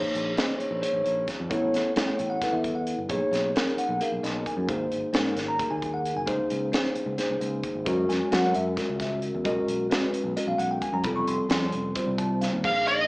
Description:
electric jazz fusion; 264 BPM (eighths); 7/8; straight; A4 = 435 Hz
bell-like tine electric piano; accompaniment; 0.0-13.0 s; F3 to Db6; -26 LUFS; equal; lush chorus, plate reverb
fingered electric bass; bass; 0.0-13.1 s; F1 to Gb3; -32 LUFS; equal
crisp fusion drum kit; drums; 0.1-13.0 s; crash cymbal, hi-hat, kick drum, snare drum; -30 LUFS; equal
smooth overdriven lead guitar; melody; 12.7-13.1 s; Eb5 to F5; -24 LUFS; equal; plate reverb
wet club reverb, RT60 0.7 s; live gig heard through the venue's PA, club reverb, small speaker sound; -24 LUFS; side -24 dB against mid
0.0-12.6 A section
tine electric piano fill 12.0-12.6
0.0 Bbm9; 1.5 A9; 3.1 B6; 4.7 Ab9; 6.3 Dbsus2; 7.9 Gb9; 9.5 Bsus2; 11.0 F
0.14 0.37 0.60 0.82 1.05 1.28 | 1.51 1.73 1.96 2.19 2.42 2.64 2.87 | 3.10 3.32 3.55 3.78 4.00 4.23 4.46 | 4.68 4.91 5.14 5.37 5.59 5.82 6.05 | 6.27 6.50 6.73 6.96 7.18 7.41 7.64 | 7.86 8.09 8.32 8.54 8.77 9.00 9.23 | 9.45 9.68 9.91 10.13 10.36 10.59 10.82 | 11.04 11.27 11.50 11.73 11.95 12.18 12.41 | 12.64 12.86

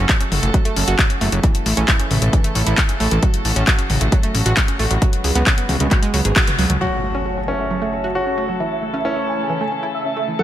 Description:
uplifting trance; 134 BPM; 4/4; straight; F# minor; A4 = 440 Hz
warm chamber string section; sustained chords; 0.0-10.4 s; C#3 to A4; -26 LUFS; equal; sidechain pumping, low-pass filter
analog pluck; arpeggios; 0.0-10.4 s; E3 to G#4; -25 LUFS; right 3 dB; chorus, sidechain pumping, ping-pong delay
fat analog bass; bass; 0.0-6.8 s; F#1 to C#2; -18 LUFS; equal; sidechain pumping
electronic kick drum; drums; 0.1-6.5 s; -17 LUFS; equal
house drum kit; drums; 0.1-6.8 s; handclaps, hi-hat, toms; -20 LUFS; left 2 dB; sidechain pumping on hats, low-pass filter on hats, sidechain pumping on cymbals, low-pass filter on cymbals, low-pass filter on snare, sidechain pumping on toms, low-pass filter on toms, low-pass filter on room
dense compressed supersaw; melody; 6.8-10.4 s; C#5 to G#5; -25 LUFS; right 2 dB; sidechain pumping, low-pass filter, ping-pong delay
clear grand piano; second line; 6.8-10.4 s; C#4 to A4; -24 LUFS; left 1 dB; tape echo
impact; sound effects; 6.8-8.6 s; -29 LUFS; equal
light reverb; -16 LUFS; side -12 dB against mid
0.0-6.8 A section; 6.8-10.4 B section
filter sweep on string section 0.0-6.8, 6.8-10.4; band accent 6.4; impact 6.8-8.6; filter sweep on supersaw synth 6.8-10.4
0.0 F#m; 1.4 A; 3.2 F#m/A; 5.0 C#7sus4; 6.8 F#m; 8.6 A
0.09 0.54 0.99 | 1.44 1.88 2.33 2.78 | 3.23 3.67 4.12 4.57 | 5.02 5.46 5.91 6.36 | 6.81 7.26 7.70 8.15 | 8.60 9.05 9.49 9.94 | 10.39

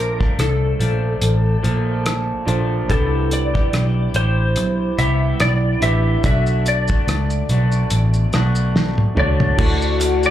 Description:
indie pop, bedroom pop; 72 BPM; 4/4; swing 55% on 16ths; A4 = 440 Hz
clean lap steel guitar; melody; 0.0-10.3 s; A4 to E5; -23 LUFS; left 2 dB; ensemble chorus, plate reverb, slapback echo, tape echo
electric guitar through a small old amp; accompaniment; 0.0-10.3 s; Bb2 to G4; -26 LUFS; equal; lush chorus, warbly pitch drift, plate reverb, slapback echo
reed electric piano; accompaniment; 0.0-10.3 s; D4 to A5; -29 LUFS; right 2 dB; cassette tape, plate reverb, slapback echo
vintage muted picked electric bass; bass; 0.0-10.3 s; A1 to D2; -18 LUFS; equal
cloth-damped thuddy drum kit; drums; 0.2-10.3 s; crash cymbal, hi-hat, kick drum, rim click, shaker, snare drum, toms; -20 LUFS; equal
warm analog pad; sustained chords; 9.6-10.3 s; A3 to F#4; -21 LUFS; left 5 dB; chorus, plate reverb
group handclap; percussion; 10.0-10.2 s; -34 LUFS; right 4 dB; slapback echo
light reverb; live gig heard through the venue's PA, club reverb; -16 LUFS; side -12 dB against mid
0.0-9.6 A section
drum fill 8.8-9.6
0.0 Bbmaj7; 2.9 Cmaj7; 6.2 Bm7; 9.6 D
0.39 1.23 2.06 | 2.90 3.73 4.57 5.41 | 6.24 7.08 7.92 8.75 | 9.59

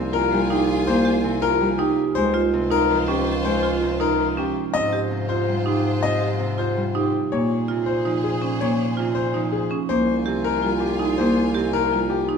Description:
classical, minimalist pattern music; 326 BPM (eighths); 7/8; straight; Bb dorian; A4 = 440 Hz
Celtic harp; accompaniment; 0.0-12.4 s; C3 to C4; -26 LUFS; right 1 dB
clear chamber string section; sustained chords; 0.0-12.2 s; F4 to Ab5; -32 LUFS; equal
warm bass clarinet; bass; 0.0-12.4 s; C2 to Bb2; -27 LUFS; left 2 dB
warm concert grand piano; melody; 0.1-12.3 s; G4 to Eb5; -24 LUFS; left 8 dB
marimba with medium hard mallets; arpeggios; 0.1-12.4 s; Db4 to G4; -24 LUFS; right 7 dB
moderate scoring stage reverb, RT60 2.1 s; dark, warm production; -19 LUFS; side -6 dB against mid
0.0-7.3 A section; 7.3-12.4 B section
0.0 Fm9/C; 2.2 Dbmaj9#11; 4.7 Ab6; 7.3 Bbm9; 9.9 Fm9/C
0.14 0.32 0.51 0.69 | 0.88 1.06 1.24 1.43 1.61 1.79 1.98 | 2.16 2.35 2.53 2.71 2.90 3.08 3.27 | 3.45 3.64 3.82 4.00 4.19 4.37 4.56 | 4.74 4.92 5.11 5.29 5.48 5.66 5.84 | 6.03 6.21 6.40 6.58 6.76 6.95 7.13 | 7.32 7.50 7.68 7.87 8.05 8.24 8.42 | 8.61 8.79 8.97 9.16 9.34 9.53 9.71 | 9.89 10.08 10.26 10.45 10.63 10.81 11.00 | 11.18 11.37 11.55 11.73 11.92 12.10 12.29

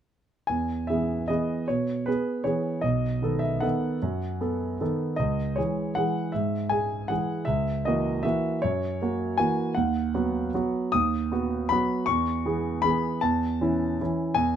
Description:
classical, piano waltz; 156 BPM; 3/4; uneven beats, rubato; E major; A4 = 440 Hz
warm concert grand piano; solo; 0.5-14.6 s; B1 to D#6; -24 LUFS; right 1 dB
little or no reverb; close, detailed microphones; -24 LUFS; side -9 dB against mid
0.5-14.6 A section
0.5 E; 2.9 B7; 5.2 C#m; 7.5 F#7/C#; 9.7 B/D#; 12.1 E; 13.2 A/E
| 0.49 0.89 1.29 | 1.69 2.07 2.46 | 2.85 3.23 3.64 | 4.03 4.42 4.81 | 5.19 5.57 5.97 | 6.35 6.72 7.11 | 7.48 7.85 8.23 | 8.62 8.99 9.38 | 9.75 10.12 10.52 | 10.94 11.31 11.70 | 12.08 12.45 12.84 | 13.23 13.61 14.00 | 14.38

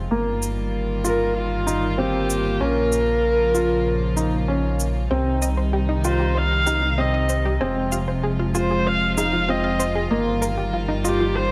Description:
piano and strings electronica; 96 BPM; 4/4; straight; F minor; A4 = 441 Hz
clear studio string section; sustained chords; 0.0-11.5 s; C3 to F4; -28 LUFS; equal
dark detuned saw bass; bass; 0.0-11.5 s; F1 to C2; -28 LUFS; equal
felt-muted upright piano; riff; 0.1-11.4 s; Bb3 to F4; -28 LUFS; equal; low-pass filter, tape echo
shaker; drums; 0.4-11.2 s; -33 LUFS; equal; overdrive
dark viola; melody; 1.1-11.5 s; F4 to F5; -26 LUFS; equal
analog pluck; arpeggios; 5.1-11.4 s; Eb4 to Ab5; -31 LUFS; equal; chorus, tape echo
moderate lush hall reverb, RT60 2.3 s; -22 LUFS; mono
0.0-11.5 A section
0.1 Ebadd9/G; 2.6 Bbm; 5.1 Cm; 7.6 Fm; 10.1 Ebadd9/G
| 0.11 0.74 1.36 1.99 | 2.61 3.24 3.86 4.49 | 5.11 5.74 6.36 6.99 | 7.61 8.24 8.86 9.49 | 10.11 10.74 11.36

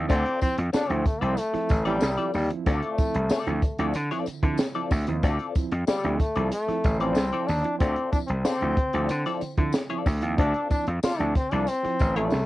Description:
funk; 93 BPM; 4/4; straight; D minor; A4 = 438 Hz
reed electric piano; stabs; 0.0-12.3 s; D3 to E4; -33 LUFS; right 7 dB; overdrive, fast tremolo, cassette tape, analog delay
gritty slap bass; bass; 0.0-12.5 s; A1 to D3; -26 LUFS; equal; overdrive
brilliant trombone; melody; 0.1-12.5 s; G3 to F4; -27 LUFS; left 1 dB; cassette tape
clean electric guitar; accompaniment; 0.1-12.4 s; C4 to D5; -31 LUFS; left 6 dB; wah, cassette tape
compact cocktail drum kit; drums; 0.1-12.5 s; hi-hat, kick drum, snare drum; -26 LUFS; equal; cassette tape
tambourine; percussion; 0.1-12.5 s; -45 LUFS; left 8 dB
little or no reverb; home recording on cassette; -23 LUFS; side -17 dB against mid
0.1-12.5 A section
0.1 Dm7
| 0.10 0.74 1.38 2.02 | 2.66 3.31 3.95 4.59 | 5.23 5.88 6.52 7.17 | 7.81 8.45 9.10 9.74 | 10.39 11.03 11.68 12.32

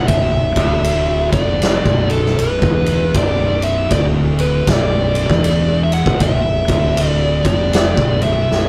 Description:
stoner and doom metal; 78 BPM; 4/4; swing 62% on 8ths; B minor; A4 = 439 Hz
fuzz lead guitar; melody; 0.0-8.7 s; A4 to F#5; -21 LUFS; equal; distortion
thick fuzz guitar; riff; 0.0-8.7 s; B1 to E#2; -23 LUFS; equal; distortion
thick fuzz guitar; riff; 0.0-8.7 s; B1 to E#2; -27 LUFS; equal
growling fingered electric bass; bass; 0.0-8.7 s; B0 to E#1; -24 LUFS; equal; overdrive
big rock drum kit; drums; 0.1-8.7 s; kick drum, ride cymbal, snare drum; -20 LUFS; equal
light reverb; band playing live in one room; -15 LUFS; mono
0.0-8.7 A section
drum fill 8.5
0.0 Bm
| 0.09 0.85 1.62 2.38 | 3.15 3.91 4.68 5.44 | 6.21 6.97 7.74 8.50

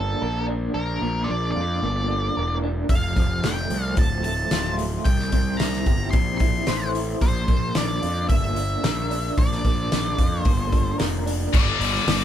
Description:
quiet-loud alternative rock; 111 BPM; 4/4; straight; A4 = 440 Hz
octave-fuzz lead guitar; melody; 0.0-12.2 s; A4 to C6; -28 LUFS; left 1 dB; distortion
electric guitar through a small old amp; arpeggios; 0.0-11.5 s; F2 to C5; -29 LUFS; equal; tremolo
fuzz picked electric bass; bass; 0.0-12.2 s; D1 to F2; -26 LUFS; equal; overdrive
loose indie drum kit; drums; 2.9-12.2 s; crash cymbal, hi-hat, kick drum, snare drum; -22 LUFS; equal
scooped high-gain guitar; riff; 11.5-12.2 s; G2 to G3; -23 LUFS; left 8 dB; distortion
light reverb; band playing live in one room; -20 LUFS; side -10 dB against mid
0.0-11.5 A section
0.0 Bb; 2.9 F; 5.1 C; 7.2 Bb; 11.5 G5
0.21 | 0.75 1.29 1.83 2.36 | 2.90 3.44 3.98 4.52 | 5.06 5.59 6.13 6.67 | 7.21 7.75 8.29 8.84 | 9.38 9.92 10.46 11.00 | 11.54 12.08

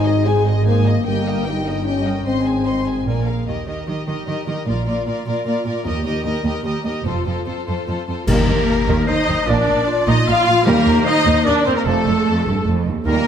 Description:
cinematic, heroic adventure film score; 150 BPM; 3/4; straight; Eb lydian from 3.5 s; A4 = 440 Hz
warm symphonic violin section; melody; 0.0-13.3 s; A4 to C6; -25 LUFS; left 2 dB
warm symphonic violin section; second line; 0.0-13.3 s; A4 to G5; -27 LUFS; left 5 dB
warm symphonic viola section; accompaniment; 0.0-13.3 s; A3 to C5; -23 LUFS; right 2 dB
mellow French horn section; sustained chords; 0.0-3.5, 8.3-13.2 s; F3 to Ab4; -22 LUFS; left 4 dB
rich symphonic double bass section; bass; 0.0-13.1 s; F1 to Eb2; -23 LUFS; right 3 dB
warm symphonic cello section; bass; 0.0-13.1 s; Eb2 to Eb3; -23 LUFS; right 2 dB
timpani; percussion; 4.7-5.2, 8.3-11.2 s; Bb2 to Eb3; -25 LUFS; left 2 dB
clear clarinet; second line; 8.3-13.3 s; F4 to C5; -26 LUFS; left 3 dB
warm oboe; second line; 8.3-13.3 s; A4 to F5; -26 LUFS; right 1 dB
warm trombone section; sustained chords; 8.3-13.2 s; Bb2 to G3; -29 LUFS; right 4 dB
clash cymbals and concert bass drum; percussion; 8.3-9.0 s; -23 LUFS; left 1 dB
moderate concert hall reverb, RT60 2.1 s; -16 LUFS; side -8 dB against mid
0.0-3.5 A section; 3.5-8.3 B section; 8.3-13.3 C section
band accent 8.3-8.7
0.0 Ab; 1.1 Eb/G; 2.3 Ab; 3.1 Bb7; 3.5 Eb; 4.7 Bb; 5.9 Eb; 7.1 F; 8.3 Eb; 9.5 Bb; 10.7 Eb; 11.9 F
0.26 0.66 | 1.06 1.46 1.86 | 2.26 2.66 3.06 | 3.47 3.87 4.27 | 4.66 5.06 5.46 | 5.85 6.25 6.65 | 7.05 7.46 7.87 | 8.28 8.68 9.08 | 9.47 9.87 10.27 | 10.66 11.06 11.46 | 11.86 12.27 12.67 | 13.07

